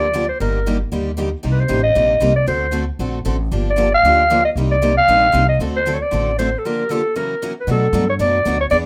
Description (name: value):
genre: acoustic string swing (jazz manouche)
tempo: 231 BPM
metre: 4/4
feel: swing 55% on 8ths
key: G minor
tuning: A4 = 439 Hz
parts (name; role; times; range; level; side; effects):
- growling clarinet; melody; 0.0-8.8 s; A4 to F5; -18 LUFS; equal; none
- picked steel-string acoustic guitar; accompaniment; 0.0-8.9 s; B2 to A4; -28 LUFS; equal; none
- picked steel-string acoustic guitar; accompaniment; 0.0-8.9 s; B2 to B4; -28 LUFS; equal; none
- upright bass; bass; 0.0-8.9 s; G1 to B2; -23 LUFS; equal; none
room: moderate small room reverb, RT60 0.5 s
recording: rough home demo mix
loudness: -17 LUFS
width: mono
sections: 0.0-7.7 A section; 7.7-8.9 B section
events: break 6.6-7.7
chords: 0.4 Ebmaj7/G; 1.4 Cm7; 2.5 D7; 3.5 Gm7; 4.6 Cm7; 5.6 D7; 6.6 Gm7; 7.2 F#7; 7.7 Bm7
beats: 0.14 | 0.40 0.66 0.92 1.18 | 1.44 1.70 1.96 2.22 | 2.48 2.74 3.00 3.26 | 3.52 3.78 4.04 4.30 | 4.56 4.82 5.08 5.34 | 5.60 5.86 6.12 6.38 | 6.64 6.90 7.16 7.42 | 7.68 7.94 8.20 8.46 | 8.71